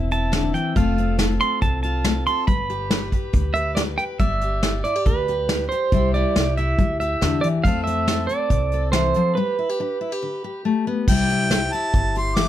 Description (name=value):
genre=honky-tonk and classic country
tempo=140 BPM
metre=4/4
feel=straight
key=C major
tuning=A4 = 439 Hz
part: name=pedal steel guitar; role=second line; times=0.0-10.6 s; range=B4 to C6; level=-24 LUFS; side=right 4 dB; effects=none
part: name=picked steel-string acoustic guitar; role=accompaniment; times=0.0-12.5 s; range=C3 to D5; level=-25 LUFS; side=left 4 dB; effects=none
part: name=upright bass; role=bass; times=0.0-12.5 s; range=E1 to F2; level=-25 LUFS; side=equal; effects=none
part: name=soft brush drum kit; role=drums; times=0.1-12.5 s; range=crash cymbal, hi-hat, kick drum, snare drum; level=-22 LUFS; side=equal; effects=none
part: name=clear harmonica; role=melody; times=11.1-12.5 s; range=G5 to D6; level=-23 LUFS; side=equal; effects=none
room=light reverb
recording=none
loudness=-19 LUFS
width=side -12 dB against mid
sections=0.0-11.1 A section; 11.1-12.5 B section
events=pedal steel guitar solo 0.0-11.1; break 9.4-11.1; harmonica solo 11.1-12.5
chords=0.0 Am; 0.8 F; 2.5 G; 5.9 C; 7.6 F; 9.4 G; 11.1 C